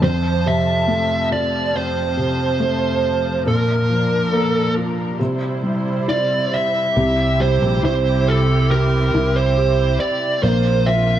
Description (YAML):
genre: pop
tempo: 69 BPM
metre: 4/4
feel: straight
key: unclear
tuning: A4 = 440 Hz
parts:
  - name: fuzz lead guitar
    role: melody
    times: 0.0-11.2 s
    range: A4 to E5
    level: -20 LUFS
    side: right 3 dB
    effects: distortion
  - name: felt-muted upright piano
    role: accompaniment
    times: 0.0-11.2 s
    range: F2 to C5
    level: -21 LUFS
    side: left 2 dB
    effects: none
  - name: rich studio string section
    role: sustained chords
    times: 0.0-11.2 s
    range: F2 to A5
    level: -25 LUFS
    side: right 1 dB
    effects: none
  - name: fingered electric bass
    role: bass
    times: 7.0-11.2 s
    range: Bb1 to C2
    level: -18 LUFS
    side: right 1 dB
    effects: none
room: light reverb, studio ambience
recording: worn, warbling old tape, cassette tape, warbly pitch drift, small room ambience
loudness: -16 LUFS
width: side -11 dB against mid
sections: 0.0-7.0 A section; 7.0-11.2 B section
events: none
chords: 0.0 F; 3.5 Bb; 5.2 C; 10.4 Bbsus2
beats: | 0.02 0.88 1.73 2.59 | 3.45 4.32 5.19 6.08 | 6.96 7.83 8.70 9.57 | 10.43